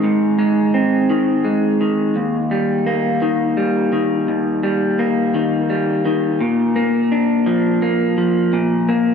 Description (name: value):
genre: rock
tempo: 57 BPM (dotted quarters)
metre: 6/8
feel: straight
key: Eb major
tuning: A4 = 442 Hz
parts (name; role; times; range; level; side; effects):
- electric guitar through a small old amp; solo; 0.0-9.1 s; Eb2 to D4; -15 LUFS; equal; ping-pong delay
room: wet plate reverb, RT60 3.0 s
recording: dreamy mix soaked in reverb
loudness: -15 LUFS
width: side -6 dB against mid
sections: 0.0-9.1 A section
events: none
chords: 0.0 Ab; 2.2 Eb; 6.4 Bb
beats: | 0.04 1.10 | 2.16 3.22 | 4.28 5.34 | 6.40 7.46 | 8.53